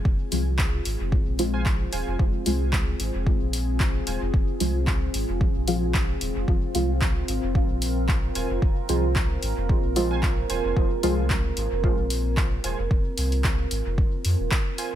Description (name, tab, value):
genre	dub techno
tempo	112 BPM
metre	4/4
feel	swing 55% on 16ths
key	F minor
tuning	A4 = 442 Hz
part	deep dark ambient pad	sustained chords	0.0-15.0 s	C4 to Bb4	-31 LUFS	equal	chorus, built-in reverb, sidechain pumping
part	soft dub sub bass	bass	0.1-15.0 s	Eb1 to F2	-27 LUFS	equal	sidechain pumping
part	electronic kick drum	drums	0.1-14.6 s	none	-23 LUFS	equal	none
part	deep mellow chord stab	stabs	0.3-11.2 s	F3 to F4	-29 LUFS	equal	chorus, phaser, sidechain pumping, dub echo
part	deep house drum kit	drums	0.3-14.9 s	handclaps, hi-hat	-31 LUFS	equal	dub echo
part	warbly lo-fi synth keys	riff	1.5-4.2, 8.4-14.9 s	F4 to Ab5	-38 LUFS	right 5 dB	chorus, sidechain pumping, dub echo
room	digital ambience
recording	none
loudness	-22 LUFS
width	side -11 dB against mid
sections	0.0-15.0 A section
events	none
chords	0.0 Fm